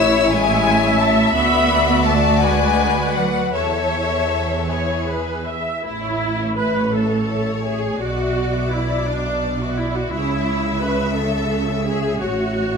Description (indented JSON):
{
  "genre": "classical, slow romantic movement for string orchestra",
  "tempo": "50-59 BPM (dotted quarters)",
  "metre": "6/8",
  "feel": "rubato",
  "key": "A major",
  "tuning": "A4 = 440 Hz",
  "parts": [
    { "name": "clear studio violin section", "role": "melody", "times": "0.0-12.8 s", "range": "C#5 to E6", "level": "-25 LUFS", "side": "left 6 dB", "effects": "none" },
    { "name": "clear studio violin section", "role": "second line", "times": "0.0-12.8 s", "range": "E4 to E5", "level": "-24 LUFS", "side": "left 5 dB", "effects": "none" },
    { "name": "clear symphonic viola section", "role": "accompaniment", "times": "0.0-12.8 s", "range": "D4 to E5", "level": "-22 LUFS", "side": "equal", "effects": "none" },
    { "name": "rich studio cello section", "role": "bass", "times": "0.0-12.8 s", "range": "A2 to E4", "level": "-24 LUFS", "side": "right 2 dB", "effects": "none" },
    { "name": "rich studio double bass section", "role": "bass", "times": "0.0-12.8 s", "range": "A1 to E2", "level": "-24 LUFS", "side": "right 3 dB", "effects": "none" }
  ],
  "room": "moderate recital hall reverb, RT60 1.5 s",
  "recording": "none",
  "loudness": "-17 LUFS",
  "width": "side -5 dB against mid",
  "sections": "0.0-5.8 A section; 5.8-12.8 B section",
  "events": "none",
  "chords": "0.0 A; 1.3 Bm/D; 3.5 A/E; 4.7 E; 5.8 A; 8.0 E5/B; 10.1 A/C#; 12.2 A"
}